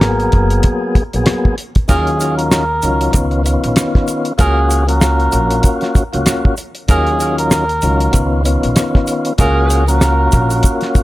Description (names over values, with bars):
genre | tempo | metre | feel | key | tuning
hip hop, boom-bap hip-hop | 96 BPM | 4/4 | swing 58% on 16ths | F# major | A4 = 439 Hz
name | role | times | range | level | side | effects
trumpet with cup mute | melody | 0.0-10.8 s | G#4 to A#4 | -19 LUFS | right 1 dB | high-pass filter, low-pass filter, tape echo
tonewheel organ | accompaniment | 0.0-11.0 s | D#3 to G#4 | -18 LUFS | left 2 dB | fast rotary speaker, high-pass filter, low-pass filter
upright bass | bass | 0.0-10.6 s | F#1 to D#2 | -16 LUFS | equal | none
cloth-damped thuddy drum kit | drums | 0.0-11.0 s | hi-hat, kick drum, rim click, snare drum | -14 LUFS | equal | none
bright saxophone section | stabs | 1.9-9.8 s | F#3 to A#4 | -25 LUFS | right 4 dB | high-pass filter, low-pass filter, tape echo
egg shaker | percussion | 1.9-11.0 s | none | -26 LUFS | right 6 dB | none
room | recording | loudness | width
studio ambience | none | -12 LUFS | side -17 dB against mid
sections
0.0-1.9 A section; 1.9-11.0 B section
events
none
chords
0.0 G#m9; 1.9 D#m9; 3.1 C#9; 4.4 F#maj7; 6.9 D#m9; 8.1 C#9; 9.4 F#maj7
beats
0.02 0.64 1.27 | 1.89 2.52 3.14 3.77 | 4.39 5.02 5.64 6.27 | 6.89 7.52 8.14 8.77 | 9.39 10.02 10.64